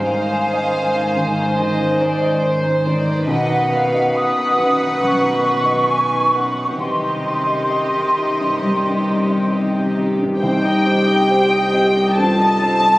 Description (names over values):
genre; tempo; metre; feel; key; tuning
cinematic; 65-72 BPM; 4/4; rubato; C minor; A4 = 440 Hz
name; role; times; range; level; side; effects
warm studio violin section; melody; 0.0-13.0 s; G4 to A5; -22 LUFS; equal; none
dark studio violin section; second line; 0.0-13.0 s; C5 to A5; -25 LUFS; equal; none
large flute ensemble; second line; 0.0-13.0 s; F#5 to D#6; -20 LUFS; equal; none
felt-muted upright piano; accompaniment; 0.0-13.0 s; B1 to Eb5; -24 LUFS; equal; none
warm studio viola section; accompaniment; 0.0-13.0 s; Eb3 to Eb5; -28 LUFS; equal; none
concert harp; arpeggios; 0.0-13.0 s; Ab2 to D6; -24 LUFS; left 1 dB; none
warm studio cello section; bass; 0.0-13.0 s; C2 to C3; -25 LUFS; right 1 dB; none
mellow clarinet; second line; 10.4-13.0 s; G4 to A4; -22 LUFS; equal; none
dark French horn section; sustained chords; 10.4-13.0 s; Eb4 to G4; -20 LUFS; equal; none
warm studio double bass section; bass; 10.4-13.0 s; C2; -28 LUFS; equal; none
room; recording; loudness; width
moderate concert hall reverb, RT60 2.5 s; recorded on a phone in the room, studio reverb, compression; -15 LUFS; side -18 dB against mid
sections
0.0-10.4 A section; 10.4-13.0 B section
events
none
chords
0.0 Ab; 3.3 B; 6.8 Cmadd9; 10.4 Cm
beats
0.75 1.59 2.43 | 3.28 4.15 5.02 5.89 | 6.80 7.71 8.63 9.52 | 10.42 11.30 12.18